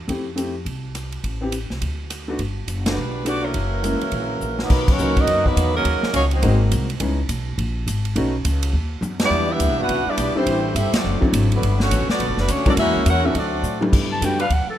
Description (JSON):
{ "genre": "jazz, big band swing", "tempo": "208 BPM", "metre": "4/4", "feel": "swing 62% on 8ths", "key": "unclear", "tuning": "A4 = 440 Hz", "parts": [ { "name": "upright bass", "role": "bass", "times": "0.0-14.7 s", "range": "F#1 to A2", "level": "-23 LUFS", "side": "equal", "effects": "none" }, { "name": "clear baby grand piano", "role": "accompaniment", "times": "0.1-8.3, 10.4-14.4 s", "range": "E3 to G4", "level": "-25 LUFS", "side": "left 1 dB", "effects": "none" }, { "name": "swinging big-band drum kit", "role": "drums", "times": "0.1-14.6 s", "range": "crash cymbal, hi-hat, kick drum, ride cymbal, rim click, snare drum, toms", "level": "-25 LUFS", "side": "equal", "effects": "none" }, { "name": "clear saxophone section", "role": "melody", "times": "2.9-6.6, 9.2-13.8 s", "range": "F#3 to F#5", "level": "-23 LUFS", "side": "equal", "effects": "none" }, { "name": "clear trombone section", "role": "second line", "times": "3.4-6.6, 9.2-13.8 s", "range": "C#3 to F#4", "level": "-25 LUFS", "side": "equal", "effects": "none" }, { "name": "clear clarinet", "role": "melody", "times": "14.1-14.8 s", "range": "A4 to A5", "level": "-23 LUFS", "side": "equal", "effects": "none" }, { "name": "warm trombone section", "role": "sustained chords", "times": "14.4-14.5 s", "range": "G3 to B4", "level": "-28 LUFS", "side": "left 2 dB", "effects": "none" } ], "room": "light reverb", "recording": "minimal, uncompressed stereo recording", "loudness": "-18 LUFS", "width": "side -11 dB against mid", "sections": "0.0-4.7 A section; 4.7-13.9 B section", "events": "band accent 2.8, 4.8, 9.2, 10.9; drum fill 4.4, 9.0, 13.6", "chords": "0.1 Fmaj9; 1.2 Am9; 1.8 D; 2.4 Gmaj7; 3.5 F#7; 4.7 Bmaj7; 5.9 D#m7; 6.4 G#7; 7.0 C#m7; 8.2 B7; 9.3 Em7; 10.5 Am7; 11.0 D7; 11.6 Gmaj9; 12.8 F#7; 13.3 D7; 13.9 Gmaj7", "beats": "| 0.08 0.37 0.66 0.95 | 1.24 1.53 1.81 2.10 | 2.39 2.68 2.97 3.26 | 3.55 3.84 4.12 4.41 | 4.70 4.99 5.28 5.57 | 5.86 6.14 6.43 6.72 | 7.01 7.30 7.59 7.87 | 8.16 8.45 8.74 9.03 | 9.31 9.60 9.89 10.18 | 10.47 10.75 11.04 11.33 | 11.62 11.91 12.19 12.48 | 12.77 13.06 13.35 13.63 | 13.92 14.21 14.50" }